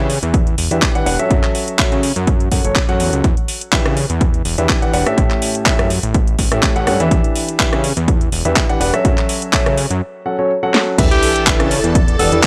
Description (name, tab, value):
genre	piano house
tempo	124 BPM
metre	4/4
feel	swing 54% on 16ths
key	E dorian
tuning	A4 = 439 Hz
part	warm grand piano	riff	0.0-12.4 s	A2 to F#5	-22 LUFS	equal	sidechain pumping, tape echo
part	fat analog bass	bass	0.0-12.4 s	E1 to C#3	-22 LUFS	equal	tube saturation, sidechain pumping
part	garage drum kit	drums	0.1-12.5 s	crash cymbal, handclaps, hi-hat, rim click, snare drum	-21 LUFS	equal	none
part	electronic kick drum	drums	0.3-12.5 s	none	-19 LUFS	equal	none
part	string machine, violins	sustained chords	11.0-12.5 s	A4 to A5	-26 LUFS	equal	ensemble chorus, sidechain pumping
part	sub drop	sound effects	11.0-12.5 s	none	-28 LUFS	equal	none
part	airy breathy pad	texture	11.0-12.5 s	E4 to D5	-26 LUFS	equal	chorus, sidechain pumping
part	raspy alto saxophone	melody	11.1-12.4 s	G4 to A4	-21 LUFS	equal	tape echo
room	light reverb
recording	dry, gritty hardware recording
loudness	-16 LUFS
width	mono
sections	0.0-11.0 A section; 11.0-12.5 B section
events	drum fill 10.7; drop 11.0-12.5; impact 11.0-12.5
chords	0.0 Em7; 1.3 F#m7; 3.2 Em7; 5.2 A7; 7.1 Em7; 9.0 F#m7; 11.0 Em7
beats	0.34 0.82 | 1.31 1.79 2.27 2.76 | 3.24 3.73 4.21 4.69 | 5.18 5.66 6.14 6.63 | 7.11 7.60 8.08 8.56 | 9.05 9.53 10.02 10.50 | 10.98 11.47 11.95 12.44